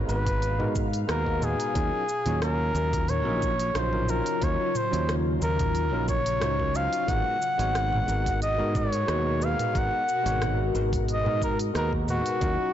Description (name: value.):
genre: sunset chillout.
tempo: 90 BPM.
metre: 4/4.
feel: swing 53% on 16ths.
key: G# dorian.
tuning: A4 = 440 Hz.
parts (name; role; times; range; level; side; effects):
tine electric piano; accompaniment; 0.0-12.7 s; F#3 to C#5; -33 LUFS; moving between left 4 dB and right 5 dB; overdrive, auto-pan, ping-pong delay.
ethereal airy pad; sustained chords; 0.0-12.7 s; B2 to A#5; -34 LUFS; left 2 dB; ensemble chorus, built-in reverb.
modern bright fingered electric bass; bass; 0.0-12.6 s; G#1 to G#2; -28 LUFS; equal; none.
warm flugelhorn; melody; 0.1-12.7 s; F#4 to F#5; -28 LUFS; equal; ping-pong delay.
smooth R&B drum kit; drums; 0.1-12.6 s; hi-hat, rim click, shaker, toms; -35 LUFS; right 1 dB; soft clipping on snare.
electronic kick drum; drums; 0.3-12.6 s; none; -30 LUFS; equal; none.
room: light reverb.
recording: blown-out, overdriven recording, overdrive, nothing above 7.8 kHz.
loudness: -24 LUFS.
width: side -11 dB against mid.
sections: 0.0-12.7 A section.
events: none.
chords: 0.0 G#m9; 1.7 D#m9; 7.1 G#m9.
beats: 0.42 1.08 | 1.75 2.42 3.08 3.75 | 4.42 5.08 5.75 6.42 | 7.08 7.75 8.42 9.08 | 9.75 10.42 11.08 11.75 | 12.42.